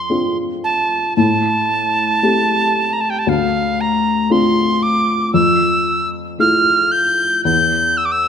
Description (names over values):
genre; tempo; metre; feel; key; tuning
celtic folk, Celtic slow air; 57 BPM; 4/4; rubato; unclear; A4 = 438 Hz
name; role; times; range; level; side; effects
bright reedy tin whistle; melody; 0.0-8.3 s; F5 to G6; -16 LUFS; right 2 dB; none
felt-muted upright piano; accompaniment; 0.0-8.3 s; D2 to G4; -18 LUFS; left 3 dB; none
room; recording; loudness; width
moderate scoring stage reverb, RT60 2.1 s; minimal, uncompressed stereo recording; -14 LUFS; side -7 dB against mid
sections
0.0-8.3 A section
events
none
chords
0.0 Dm7/F; 1.2 Am7; 3.3 Dm7; 5.4 Fmaj7; 7.5 C/E (rootless)